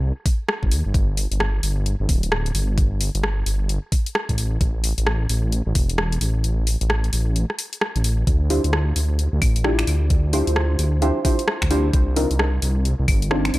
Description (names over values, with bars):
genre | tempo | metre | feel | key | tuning
UK garage, two-step garage | 131 BPM | 4/4 | swing 62% on 16ths | D minor | A4 = 442 Hz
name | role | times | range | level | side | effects
dark detuned saw bass | bass | 0.0-13.6 s | D1 to Eb2 | -20 LUFS | equal | tube saturation
electronic kick drum | drums | 0.3-13.2 s | none | -20 LUFS | equal | none
house drum kit | drums | 0.3-13.6 s | claves, finger snaps, hi-hat, rim click | -25 LUFS | left 1 dB | overdrive
deep mellow chord stab | stabs | 8.5-13.6 s | C4 to D5 | -23 LUFS | equal | chorus, dub echo
room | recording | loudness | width
light reverb, digital ambience | echo-heavy mix | -18 LUFS | side -18 dB against mid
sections
0.0-13.6 A section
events
kick drops out 6.4-8.3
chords
0.0 Cm; 0.9 G5; 4.4 A5; 8.3 Dm11; 11.9 Cm11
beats
0.03 0.49 | 0.94 1.40 1.86 2.32 | 2.78 3.23 3.69 4.15 | 4.61 5.07 5.53 5.98 | 6.44 6.90 7.36 7.82 | 8.27 8.73 9.19 9.65 | 10.11 10.56 11.02 11.48 | 11.94 12.39 12.85 13.31